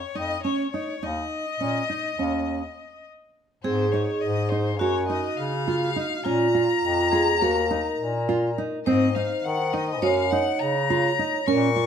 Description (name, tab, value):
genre	contemporary instrumental, chamber music in an uneven meter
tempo	207 BPM (eighths)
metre	9/8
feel	straight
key	Eb dorian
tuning	A4 = 440 Hz
part	rich violin	melody	0.0-11.9 s	C5 to Db6	-28 LUFS	left 6 dB	none
part	clear bass clarinet	bass	0.1-11.9 s	Eb2 to Eb3	-28 LUFS	left 1 dB	none
part	nylon-string guitar	arpeggios	0.2-11.9 s	C4 to Gb4	-27 LUFS	right 3 dB	none
part	vibraphone with hard mallets	second line	3.6-11.9 s	F4 to Db5	-26 LUFS	right 2 dB	none
room	moderate studio reverb, RT60 1.0 s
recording	none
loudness	-22 LUFS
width	side -8 dB against mid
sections	0.0-3.6 A section; 3.6-11.9 B section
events	stop 2.8-3.6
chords	0.0 Dbadd9/F; 1.0 Eb5; 3.6 Ab; 4.8 Gb5; 6.3 Bbm; 7.4 Ebm; 8.9 Ab; 10.0 Gbmaj7